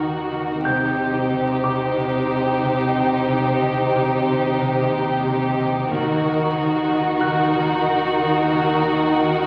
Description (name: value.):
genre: cinematic.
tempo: 91 BPM.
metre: 4/4.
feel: straight.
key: unclear.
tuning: A4 = 439 Hz.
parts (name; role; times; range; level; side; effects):
warm studio violin section; melody; 0.0-9.5 s; Bb4 to C5; -29 LUFS; equal; none.
clear studio violin section; second line; 0.0-9.5 s; Gb4 to G4; -25 LUFS; equal; none.
warm studio viola section; accompaniment; 0.0-9.5 s; Eb4; -28 LUFS; equal; none.
concert harp; riff; 0.0-9.5 s; C3 to Eb3; -29 LUFS; equal; none.
warm studio cello section; bass; 0.0-9.5 s; C3 to Eb3; -28 LUFS; equal; none.
metallic inharmonic drone; drone; 0.0-9.5 s; Eb2; -34 LUFS; equal; chorus, built-in reverb.
warm grand piano; texture; 0.0-9.5 s; D6 to G6; -33 LUFS; equal; none.
dark studio double bass section; bass; 0.6-1.3, 5.9-6.5 s; C2 to Eb2; -36 LUFS; equal; none.
room: wet scoring stage reverb, RT60 1.6 s.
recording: very old 78 rpm record, vinyl crackle.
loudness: -20 LUFS.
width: mono.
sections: 0.0-9.5 A section.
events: none.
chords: 0.0 Ebm; 0.6 Cm; 5.9 Ebm.